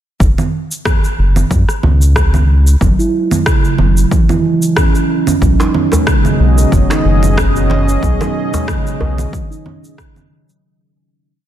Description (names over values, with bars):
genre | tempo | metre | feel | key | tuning
organic downtempo | 92 BPM | 4/4 | swing 55% on 16ths | unclear | A4 = 442 Hz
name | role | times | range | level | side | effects
round analog bass | bass | 0.2-9.3 s | F#1 to F#2 | -12 LUFS | equal | sidechain pumping
electronic kick drum | drums | 0.2-10.1 s | none | -14 LUFS | equal | overdrive, small room ambience
electronic shaker, congas and rim click | drums | 0.2-10.6 s | none | -19 LUFS | right 2 dB | overdrive, small room ambience
steel tongue drum | arpeggios | 2.8-10.6 s | C#3 to E4 | -16 LUFS | right 2 dB | tape echo
warm analog pad | sustained chords | 5.4-10.6 s | B2 to D#5 | -19 LUFS | equal | chorus, sidechain pumping
djembe | percussion | 5.6-9.3 s | none | -21 LUFS | equal | none
room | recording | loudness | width
light reverb | dense, heavily limited modern master | -10 LUFS | side -11 dB against mid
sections
0.2-10.6 groove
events
fade-out 7.2-10.6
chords
0.2 F#5; 5.4 B6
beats
| 0.20 0.85 1.51 2.16 | 2.81 3.46 4.12 4.77 | 5.42 6.07 6.72 7.38 | 8.03 8.68 9.33 9.98